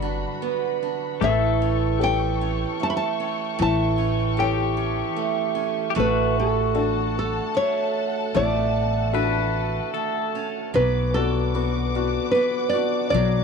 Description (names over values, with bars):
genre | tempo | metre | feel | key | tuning
acoustic folk-pop ballad | 75 BPM | 3/4 | straight | D major | A4 = 440 Hz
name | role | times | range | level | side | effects
nylon-string guitar | melody | 0.0-13.4 s | A4 to B5 | -25 LUFS | left 1 dB | none
warm upright piano | accompaniment | 0.0-13.4 s | D3 to C#5 | -29 LUFS | left 14 dB | none
muted studio string section | sustained chords | 0.0-13.4 s | F#4 to D6 | -32 LUFS | left 5 dB | none
picked acoustic archtop guitar | arpeggios | 0.0-13.4 s | E3 to G4 | -26 LUFS | right 15 dB | none
upright bass | bass | 0.0-13.4 s | G1 to B1 | -25 LUFS | equal | none
pedal steel guitar | second line | 1.2-10.7 s | F#4 to B4 | -31 LUFS | left 12 dB | none
room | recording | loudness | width
light reverb, small room ambience | 1960s-style stereo with parts hard left and right | -20 LUFS | side -5 dB against mid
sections
0.0-10.7 A section; 10.7-13.4 A section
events
none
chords
0.0 Gmaj7; 1.2 A7; 6.0 Dmaj7/A; 10.7 Bm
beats
0.41 | 1.20 2.00 2.80 | 3.59 4.38 5.17 | 5.96 6.76 7.55 | 8.35 9.14 9.94 | 10.74 11.54 12.34 | 13.13